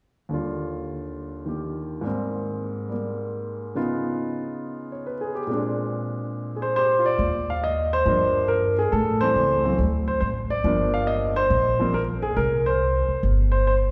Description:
jazz piano trio; 139 BPM; 4/4; swing 68% on 8ths; Eb major; A4 = 441 Hz
warm concert grand piano; melody; 0.3-13.7 s; Eb2 to F5; -25 LUFS; equal
upright bass; bass; 7.2-13.9 s; G1 to A2; -27 LUFS; equal
wet church reverb, RT60 2.7 s; recorded in a church or concert hall; -24 LUFS; mono
0.3-7.2 A section; 7.2-13.9 B section
0.3 Ebmaj9; 2.0 Abmaj9; 3.8 Db9; 5.5 Bb9; 7.2 Ebmaj7; 8.9 Am7; 9.8 D5; 10.6 Gm7; 12.4 C5

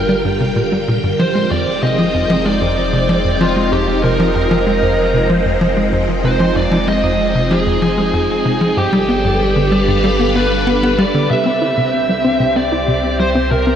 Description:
ambient, sequencer-driven space music; 95 BPM; 4/4; straight; A4 = 440 Hz
bluesy overdriven lead guitar; melody; 0.0-13.8 s; F4 to E5; -18 LUFS; right 2 dB; distortion, analog delay
phased string machine; sustained chords; 0.0-13.8 s; C3 to G5; -18 LUFS; equal; ensemble chorus, phaser
tight sequencer bass; riff; 0.0-13.7 s; F2 to E4; -18 LUFS; equal; analog delay
round analog bass; bass; 0.0-13.8 s; F1 to C2; -23 LUFS; equal
wind-like tuned noise texture; texture; 13.6-13.8 s; barely audible
wet huge ambient reverb, RT60 7.6 s; -13 LUFS; side -9 dB against mid
0.0-11.3 A section; 11.3-13.8 B section
filter sweep on analog synth bass 0.0-11.3
0.0 Gm7; 1.2 Fm9; 8.8 G7; 11.3 C

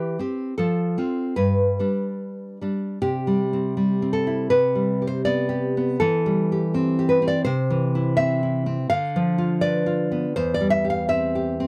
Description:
romantic piece for solo classical guitar; 71-85 BPM; 2/4; rubato; C major; A4 = 440 Hz
nylon-string guitar; solo; 0.0-11.7 s; E2 to F5; -23 LUFS; equal
light reverb; -23 LUFS; mono
0.0-3.0 A section; 3.0-11.7 A section
0.0 C/E; 0.6 F; 1.4 G; 3.0 C; 4.5 G/C; 6.0 C/E; 7.5 C; 8.9 Bdim/D; 10.4 C/E

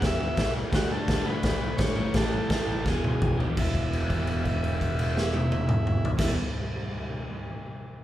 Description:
garage rock duo or trio; 169 BPM; 4/4; straight; A4 = 442 Hz
overdriven combo organ; melody; 0.0-6.3 s; E4 to E5; -34 LUFS; equal
crunchy overdriven guitar; riff; 0.0-6.4 s; E2 to D4; -32 LUFS; right 1 dB
growling picked electric bass; bass; 0.0-6.3 s; E1 to A2; -31 LUFS; equal; overdrive
raw garage drum kit; drums; 0.0-6.3 s; crash cymbal, kick drum, snare drum, toms; -27 LUFS; equal
moderate large studio reverb, RT60 1.1 s; band playing live in one room; -24 LUFS; side -13 dB against mid
0.0-3.6 A section; 3.6-6.4 B section
drum fill 2.9-3.6; held note 3.6-6.2
0.0 E5; 0.7 D5; 2.0 A5; 2.9 E; 3.6 E5

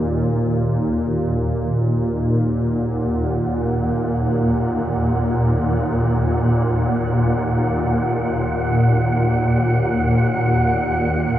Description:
dark ambient drone; free time; Eb minor; A4 = 440 Hz
swarming drone; drone; 0.0-11.4 s; Eb2 to Bb2; -17 LUFS; equal; built-in reverb
wind-like tuned noise texture; texture; 2.8-11.4 s; Gb5; -26 LUFS; right 2 dB; built-in reverb, shimmer reverb
wet huge ambient reverb, RT60 8.0 s; worn, warbling old tape, cassette tape, warbly pitch drift; -17 LUFS; side -12 dB against mid
0.0-11.4 A section
0.0 Ebm

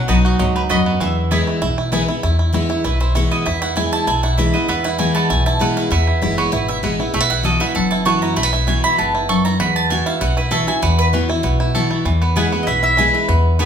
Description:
bluegrass; 195 BPM; 4/4; straight; E major; A4 = 439 Hz
mandolin; melody; 0.0-1.9, 12.2-13.7 s; B4 to F#5; -20 LUFS; equal
picked steel-string acoustic guitar; accompaniment; 0.0-13.7 s; E2 to F#4; -20 LUFS; left 2 dB
bluegrass banjo; arpeggios; 0.0-13.7 s; E3 to A4; -21 LUFS; right 4 dB
mandolin; stabs; 0.1-13.7 s; B3 to C#6; -21 LUFS; right 2 dB
upright bass; bass; 0.1-13.7 s; F#1 to E2; -20 LUFS; equal
wet large studio reverb, RT60 1.1 s; band playing live in one room; -15 LUFS; side -8 dB against mid
0.0-2.2 A section; 2.2-12.1 B section; 12.1-13.7 C section
mandolin solo 2.2-12.1
0.0 B; 1.0 E; 9.6 Esus2; 12.1 E

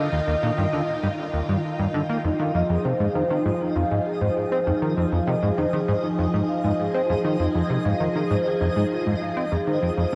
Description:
ambient, sequencer-driven space music; 99 BPM; 4/4; straight; F minor; A4 = 437 Hz
breathy flute-like synth lead; melody; 0.0-1.6 s; Eb5; -33 LUFS; equal; subtle chorus, cassette tape, tape echo
phased string machine; sustained chords; 0.0-10.2 s; Eb3 to G5; -31 LUFS; equal; ensemble chorus, phaser
plucky analog bass; riff; 0.0-10.2 s; Eb2 to C4; -27 LUFS; equal; subtle chorus, tape echo
twinkling granular texture; texture; 0.0-10.2 s; Eb4 to Eb5; -39 LUFS; equal; built-in reverb
vibraphone with soft mallets; arpeggios; 2.2-10.2 s; Eb4 to F5; -27 LUFS; equal; tape echo
wet huge ambient reverb, RT60 7.3 s; worn, warbling old tape, cassette tape, warbly pitch drift; -23 LUFS; mono
0.0-10.2 A section
0.0 Ebmaj7; 2.2 Fm7

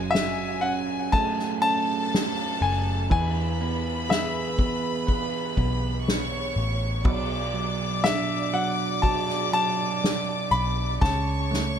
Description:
pop ballad; 61 BPM; 4/4; straight; F# minor; A4 = 440 Hz
warm studio violin section; second line; 0.0-11.8 s; G#3 to D6; -30 LUFS; left 2 dB; dub echo
bell-like tine electric piano; accompaniment; 0.0-11.8 s; B2 to B4; -30 LUFS; right 6 dB; dub echo
vintage muted fingered electric bass; bass; 0.0-11.8 s; F#1 to E2; -29 LUFS; left 1 dB
bright concert grand piano; melody; 0.1-11.8 s; E5 to B5; -27 LUFS; left 3 dB; dub echo
soft-mallet drum kit; drums; 0.1-11.8 s; kick drum, ride cymbal, snare drum; -29 LUFS; equal
studio ambience; echo-heavy mix; -23 LUFS; side -8 dB against mid
0.0-11.8 A section
drum fill 11.0-11.8
0.0 F#madd9; 3.1 E; 7.0 Bm; 11.0 F#m/C# (rootless)

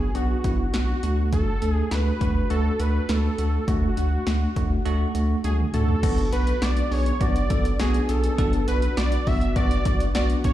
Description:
synth-pop; 102 BPM; 4/4; straight; B dorian; A4 = 440 Hz
wide unison lead; melody; 0.0-10.5 s; F#4 to E5; -29 LUFS; right 1 dB; digital delay
bell-like tine electric piano; accompaniment; 0.0-10.5 s; A3 to A4; -27 LUFS; equal; medium stereo tremolo
round analog bass; bass; 0.0-10.5 s; B1 to D2; -24 LUFS; equal
punchy analog drum machine; drums; 0.1-10.5 s; crash cymbal, hi-hat, kick drum, snare drum, toms; -26 LUFS; equal
warm analog pad; sustained chords; 6.5-10.5 s; B3 to F#4; -33 LUFS; right 1 dB; chorus
light reverb, digital ambience; played on a big sound system in a bare room, large studio reverb; -20 LUFS; side -13 dB against mid
0.0-6.0 A section; 6.0-10.5 B section
drum fill 5.4-6.0
0.0 Bm; 1.0 D; 6.0 Bm

